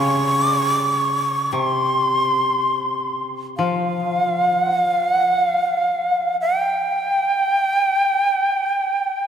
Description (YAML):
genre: japanese traditional, Japanese chamber music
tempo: free time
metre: none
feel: none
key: unclear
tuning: A4 = 440 Hz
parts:
  - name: breathy bright shakuhachi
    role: melody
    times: 0.0-9.3 s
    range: F5 to Db6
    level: -18 LUFS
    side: right 1 dB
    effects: none
  - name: koto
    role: accompaniment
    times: 0.0-6.8 s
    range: C3 to G4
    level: -25 LUFS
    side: left 1 dB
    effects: none
room: wet cathedral reverb, RT60 4.7 s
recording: in a vast, echoing space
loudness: -17 LUFS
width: side -8 dB against mid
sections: 0.0-9.3 A section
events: none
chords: none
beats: free time